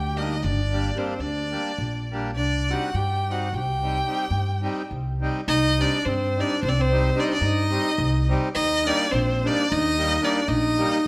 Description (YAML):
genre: balkan folk, Balkan wedding band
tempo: 214 BPM (eighths)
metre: 11/8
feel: straight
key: C minor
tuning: A4 = 438 Hz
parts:
  - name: rich violin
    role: melody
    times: 0.0-11.1 s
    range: C5 to G5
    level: -28 LUFS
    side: equal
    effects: none
  - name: warm clarinet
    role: second line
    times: 0.0-11.1 s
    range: C4 to G4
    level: -30 LUFS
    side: equal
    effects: none
  - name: upright bass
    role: bass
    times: 0.0-10.8 s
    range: G1 to G2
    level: -28 LUFS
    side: equal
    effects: none
  - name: accordion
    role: accompaniment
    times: 0.1-11.0 s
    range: G3 to G4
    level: -33 LUFS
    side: equal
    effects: none
room: moderate recital hall reverb, RT60 1.6 s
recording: none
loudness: -24 LUFS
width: mono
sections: 0.0-5.5 A section; 5.5-11.1 B section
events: none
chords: 0.0 Gm; 2.4 Cm; 8.6 Eb